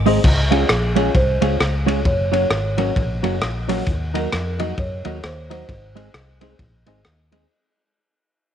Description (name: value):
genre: ska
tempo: 132 BPM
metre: 4/4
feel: swing 60% on 8ths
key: Db major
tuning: A4 = 440 Hz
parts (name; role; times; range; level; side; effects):
- vintage muted fingered electric bass; bass; 0.0-7.4 s; Gb1 to Gb2; -22 LUFS; equal; none
- clean electric guitar; accompaniment; 0.1-7.5 s; Gb3 to Ab4; -23 LUFS; right 12 dB; analog chorus
- dark upright piano; stabs; 0.1-7.5 s; Db4 to Eb5; -25 LUFS; left 10 dB; none
- crunchy breakbeat drum kit; drums; 0.1-7.4 s; crash cymbal, hi-hat, kick drum, ride cymbal, rim click; -22 LUFS; equal; none
- marimba with soft mallets; melody; 0.5-7.0 s; Ab4 to Db5; -26 LUFS; right 2 dB; tape echo
room: light reverb, small room ambience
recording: 1960s-style stereo with parts hard left and right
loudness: -17 LUFS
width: side -9 dB against mid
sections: 0.2-7.5 A section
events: fade-out 0.2-7.5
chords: 0.2 Db; 2.1 Gb; 3.9 Ebm; 5.7 Ab